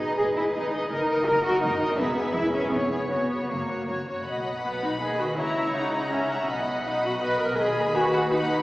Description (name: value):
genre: quick classical-period movement for string orchestra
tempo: 164 BPM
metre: 3/4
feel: rubato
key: B major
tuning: A4 = 439 Hz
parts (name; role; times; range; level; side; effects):
- warm studio violin section; melody; 0.0-8.6 s; C#5 to B5; -33 LUFS; left 1 dB; none
- warm studio violin section; second line; 0.0-8.6 s; A#4 to G#5; -29 LUFS; equal; none
- rich studio viola section; accompaniment; 0.0-8.6 s; B3 to B4; -28 LUFS; equal; none
- rich chamber double bass section; bass; 0.0-8.6 s; E1 to D#2; -36 LUFS; equal; none
- warm symphonic cello section; bass; 0.0-8.6 s; D#2 to A#4; -28 LUFS; equal; none
room: wet concert hall reverb, RT60 2.3 s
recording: heard from further back in the room, small speaker sound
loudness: -23 LUFS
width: side -18 dB against mid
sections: 0.0-4.3 A section; 4.3-8.6 B section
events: none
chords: 0.0 G#m; 0.9 D#m/F#; 2.0 E; 2.7 C#7/E#; 3.1 F#; 4.3 B; 5.4 F#7/C#; 6.5 B; 7.6 B/D#